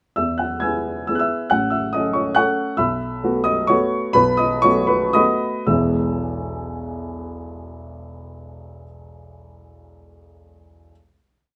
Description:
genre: classical, piano waltz.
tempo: 110-144 BPM.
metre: 3/4.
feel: rubato.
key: E major.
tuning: A4 = 444 Hz.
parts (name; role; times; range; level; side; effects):
dark upright piano; solo; 0.2-10.9 s; E1 to G#6; -21 LUFS; equal; none.
room: light reverb.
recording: none.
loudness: -20 LUFS.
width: mono.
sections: 0.2-5.7 A section; 5.7-8.7 final chord.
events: slowing down 2.1-5.7.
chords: 0.2 E; 1.5 A; 2.8 B7sus4; 4.2 B7; 5.7 E.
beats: | 0.18 0.63 1.08 | 1.51 1.93 2.36 | 2.79 3.23 3.69 | 4.16 4.64 5.16 | 5.68 6.17 6.68 | 7.19 7.69 8.20.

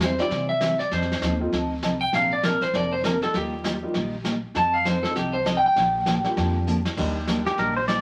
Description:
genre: country, western swing.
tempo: 198 BPM.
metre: 4/4.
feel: swing 60% on 8ths.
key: Bb major.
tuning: A4 = 438 Hz.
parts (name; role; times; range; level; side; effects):
clean lap steel guitar; melody; 0.0-6.4 s; G4 to A5; -25 LUFS; equal; none.
picked steel-string acoustic guitar; accompaniment; 0.0-8.0 s; C3 to C5; -30 LUFS; equal; none.
upright bass; bass; 0.0-8.0 s; F1 to C3; -34 LUFS; equal; none.
vintage brush drum kit; drums; 0.0-8.0 s; brushed snare drum, crash cymbal, hi-hat, kick drum, snare drum; -33 LUFS; equal; none.
warm upright piano; accompaniment; 0.2-7.7 s; E3 to G4; -33 LUFS; equal; none.
pedal steel guitar; second line; 7.5-8.0 s; G4 to D5; -25 LUFS; equal; none.
room: wet studio reverb, RT60 0.6 s.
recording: vinyl crackle.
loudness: -24 LUFS.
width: mono.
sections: 0.0-7.0 A section; 7.0-8.0 A section.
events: electric slide guitar solo 0.0-7.0; drum fill 6.7-7.0; pedal steel guitar solo 7.0-8.0.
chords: 0.0 C/E; 0.9 F7; 2.1 Bbadd9; 3.3 Ebadd9; 4.6 F7; 5.8 Bb6; 7.0 Ebmaj7.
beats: 0.01 0.31 0.62 | 0.92 1.22 1.53 1.83 | 2.13 2.44 2.74 3.04 | 3.34 3.65 3.95 4.25 | 4.55 4.86 5.16 5.46 | 5.77 6.07 6.37 6.67 | 6.98 7.28 7.58 7.88.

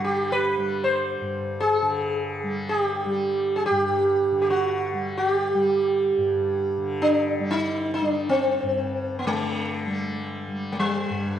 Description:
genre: indian classical, Hindustani.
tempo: free time.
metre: none.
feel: none.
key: unclear.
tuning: A4 = 440 Hz.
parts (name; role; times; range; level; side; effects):
sitar; melody; 0.0-11.4 s; G3 to C5; -22 LUFS; right 1 dB; none.
tanpura; drone; 0.0-11.4 s; G2 to G3; -31 LUFS; left 1 dB; none.
room: moderate recital hall reverb, RT60 1.4 s.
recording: dark, warm production.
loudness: -22 LUFS.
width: side -10 dB against mid.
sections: 0.0-11.4 A section.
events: none.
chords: none.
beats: free time.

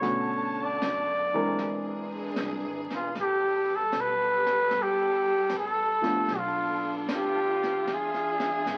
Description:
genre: jazz ballad.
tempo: 76 BPM.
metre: 4/4.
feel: swing 69% on 8ths.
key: A minor.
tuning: A4 = 438 Hz.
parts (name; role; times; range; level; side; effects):
clear flugelhorn; melody; 0.0-8.8 s; F4 to D5; -28 LUFS; equal; none.
warm baby grand piano; accompaniment; 0.0-6.3 s; D3 to Bb4; -34 LUFS; equal; none.
warm studio string section; sustained chords; 0.0-8.8 s; D3 to A5; -38 LUFS; equal; none.
upright bass; bass; 0.0-8.8 s; E1 to B2; -47 LUFS; equal; none.
jazz brush drum kit; drums; 0.0-8.8 s; brushed snare drum, hi-hat, snare drum; -40 LUFS; equal; none.
room: moderate studio reverb, RT60 0.9 s.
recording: very old 78 rpm record, vinyl crackle.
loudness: -28 LUFS.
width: mono.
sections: 0.0-8.8 A section.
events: none.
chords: 0.0 Bm9; 1.6 Eaug7; 3.1 Asus2; 6.3 Bm7b5; 7.9 E7b9.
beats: | 0.01 0.80 1.58 2.36 | 3.15 3.93 4.72 5.50 | 6.29 7.08 7.87 8.66.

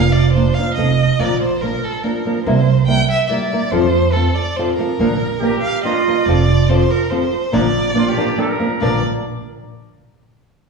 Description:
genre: mexican folk, mariachi.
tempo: 142 BPM.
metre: 3/4.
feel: straight.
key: Bb major.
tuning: A4 = 440 Hz.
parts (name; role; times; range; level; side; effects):
warm violin; melody; 0.0-9.0 s; A4 to G5; -21 LUFS; right 1 dB; none.
nylon-string guitar; accompaniment; 0.0-9.0 s; Bb2 to Bb4; -18 LUFS; equal; none.
upright bass; bass; 0.0-9.0 s; F1 to F2; -18 LUFS; right 4 dB; none.
warm trumpet; second line; 5.4-9.0 s; F4 to D5; -21 LUFS; right 6 dB; none.
room: wet recital hall reverb, RT60 1.6 s.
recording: recorded in a church or concert hall, small room ambience.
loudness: -14 LUFS.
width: side -4 dB against mid.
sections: 0.0-6.3 A section; 6.3-8.8 B section; 8.8-10.1 C section.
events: none.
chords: 0.0 Bb/F; 0.8 F; 1.2 Bb; 2.5 C7; 3.7 F; 5.0 Bb; 6.3 F; 7.5 Bb.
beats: 0.35 0.77 | 1.20 1.63 2.05 | 2.47 2.88 3.30 | 3.72 4.14 4.57 | 4.99 5.41 5.84 | 6.27 6.69 7.11 | 7.53 7.96 8.38 | 8.80.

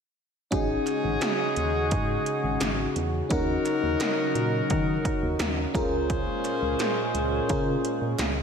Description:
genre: 1980s-style pop.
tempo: 86 BPM.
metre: 4/4.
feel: straight.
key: unclear.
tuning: A4 = 440 Hz.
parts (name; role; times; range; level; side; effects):
FM electric piano with soft pad layer; accompaniment; 0.5-8.4 s; Db4 to Bb4; -28 LUFS; left 1 dB; chorus.
chorused pulse-width pad; sustained chords; 0.5-8.4 s; Bb2 to Gb4; -32 LUFS; equal; none.
clear horn section; stabs; 0.5-8.2 s; Db4 to C5; -32 LUFS; left 1 dB; slapback echo.
solid FM bass; bass; 0.5-8.4 s; Ab1 to Eb3; -30 LUFS; equal; none.
80s electronic pad drums; drums; 0.5-8.4 s; hi-hat, kick drum, snare drum; -30 LUFS; equal; none.
group handclap; percussion; 0.9-8.4 s; none; -44 LUFS; right 4 dB; none.
room: wet scoring stage reverb, RT60 2.0 s.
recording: big arena sound.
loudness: -24 LUFS.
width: side -6 dB against mid.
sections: 0.5-8.4 A section.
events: none.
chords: 0.5 Ab7sus4; 3.3 Ebm7; 5.8 Bbm7/Db.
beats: | 0.52 1.22 1.91 2.61 | 3.31 4.01 4.71 5.40 | 6.10 6.80 7.50 8.19.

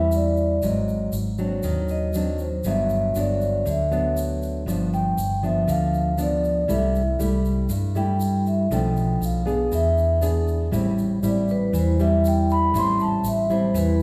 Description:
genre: bossa nova.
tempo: 119 BPM.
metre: 4/4.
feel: straight.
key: A minor.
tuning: A4 = 440 Hz.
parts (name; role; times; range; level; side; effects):
vibraphone with soft mallets; melody; 0.0-14.0 s; B4 to C6; -27 LUFS; equal; none.
nylon-string guitar; accompaniment; 0.0-14.0 s; G2 to G#4; -26 LUFS; equal; none.
hollow-body short-scale fingered electric bass; bass; 0.0-14.0 s; G1 to G2; -27 LUFS; equal; none.
egg shaker; percussion; 0.1-14.0 s; none; -44 LUFS; equal; none.
room: wet recital hall reverb, RT60 1.5 s.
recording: recorded in a church or concert hall.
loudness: -22 LUFS.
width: mono.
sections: 0.0-14.0 A section.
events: vibraphone solo 0.0-14.0.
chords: 0.0 Am7 (rootless); 0.6 G#7#11; 2.6 Gmaj7; 4.7 G7; 6.7 C6; 8.7 Bm7b5; 9.7 E7; 10.7 Am7.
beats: 0.12 | 0.62 1.13 1.64 2.14 | 2.65 3.15 3.66 4.16 | 4.67 5.17 5.68 6.18 | 6.69 7.20 7.70 8.20 | 8.71 9.21 9.72 10.22 | 10.73 11.23 11.74 12.24 | 12.74 13.25 13.75.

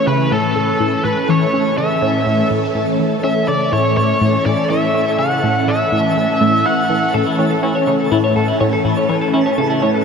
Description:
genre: ambient, sequencer-driven space music.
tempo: 123 BPM.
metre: 4/4.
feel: straight.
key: unclear.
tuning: A4 = 435 Hz.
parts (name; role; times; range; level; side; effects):
biting lead guitar; melody; 0.0-7.1 s; A4 to F#5; -18 LUFS; equal; overdrive, ping-pong delay.
phased string machine; sustained chords; 0.0-10.0 s; E3 to B4; -18 LUFS; equal; ensemble chorus, phaser.
twinkling granular texture; texture; 0.0-10.0 s; A5; -32 LUFS; right 4 dB; built-in reverb.
tight sequenced synth; riff; 0.1-10.0 s; A2 to E4; -19 LUFS; equal; chorus, phaser, ping-pong delay.
twelve-string electric guitar; arpeggios; 7.1-10.0 s; E4 to C#5; -18 LUFS; left 3 dB; auto-pan, ping-pong delay.
room: wet huge ambient reverb, RT60 8.0 s.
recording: none.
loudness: -13 LUFS.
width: side -6 dB against mid.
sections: 0.0-10.0 A section.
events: fade-in on synth texture 0.0-10.0.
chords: 0.0 A.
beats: 0.31 0.80 | 1.29 1.78 2.27 2.75 | 3.24 3.73 4.22 4.70 | 5.19 5.68 6.17 6.66 | 7.14 7.63 8.12 8.61 | 9.09 9.58.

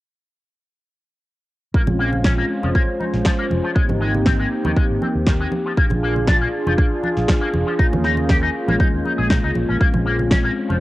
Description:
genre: nu-disco, nu disco.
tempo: 119 BPM.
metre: 4/4.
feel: swing 54% on 16ths.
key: Bb dorian.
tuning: A4 = 440 Hz.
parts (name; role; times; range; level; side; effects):
warm analog pad; accompaniment; 1.7-10.8 s; Ab3 to C5; -22 LUFS; equal; chorus, sidechain pumping, cassette tape, analog delay.
electric guitar with an envelope filter; riff; 1.7-10.8 s; Eb3 to Ab4; -24 LUFS; left 2 dB; analog chorus, cassette tape, analog delay.
fingered electric bass with an envelope filter; bass; 1.7-10.8 s; F1 to Eb2; -23 LUFS; equal; tube saturation.
electronic kick drum; drums; 1.7-10.4 s; none; -18 LUFS; equal; cassette tape.
congas; percussion; 1.9-10.8 s; none; -27 LUFS; right 2 dB; none.
electronic snare drum; drums; 2.2-10.4 s; none; -26 LUFS; equal; cassette tape.
room: light reverb.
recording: home recording on cassette.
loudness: -16 LUFS.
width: side -17 dB against mid.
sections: 1.7-10.8 A section.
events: none.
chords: 1.7 Bbm9; 3.8 Abmaj7; 5.5 Bb7; 7.8 Eb9sus4; 9.8 Bbm9.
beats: | 1.74 2.25 2.75 3.25 | 3.76 4.26 4.77 5.27 | 5.78 6.28 6.78 7.29 | 7.79 8.30 8.80 9.30 | 9.81 10.31.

